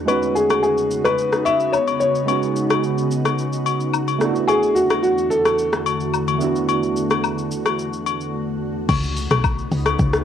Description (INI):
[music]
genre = amapiano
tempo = 109 BPM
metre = 4/4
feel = straight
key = unclear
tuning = A4 = 441 Hz
[part]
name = soft electric-piano-like synth keys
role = accompaniment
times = 0.0-8.9 s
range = G#3 to F#4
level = -24 LUFS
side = right 7 dB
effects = chorus
[part]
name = glassy FM pad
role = sustained chords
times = 0.0-10.2 s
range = E2 to F#4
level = -25 LUFS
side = left 1 dB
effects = ensemble chorus, built-in reverb, sidechain pumping
[part]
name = dark grand piano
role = melody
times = 0.1-8.3 s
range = F#4 to E5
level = -19 LUFS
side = left 2 dB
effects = cassette tape, analog delay
[part]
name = afro-pop drum kit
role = drums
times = 0.1-10.2 s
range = crash cymbal, hi-hat, kick drum, rim click, shaker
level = -24 LUFS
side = left 1 dB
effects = cassette tape
[part]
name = agogo bells and woodblock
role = percussion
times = 0.1-10.0 s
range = none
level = -25 LUFS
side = left 11 dB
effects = none
[part]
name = woody log drum bass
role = bass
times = 8.9-10.2 s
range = B1 to C#2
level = -21 LUFS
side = left 1 dB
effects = none
[sound]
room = moderate spring reverb, RT60 1.4 s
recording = home recording on cassette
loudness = -17 LUFS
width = side -9 dB against mid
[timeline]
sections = 0.0-8.9 A section; 8.9-10.2 B section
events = drop 8.9-10.2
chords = 0.1 C#9sus4; 4.2 E9sus4; 8.9 C#9sus4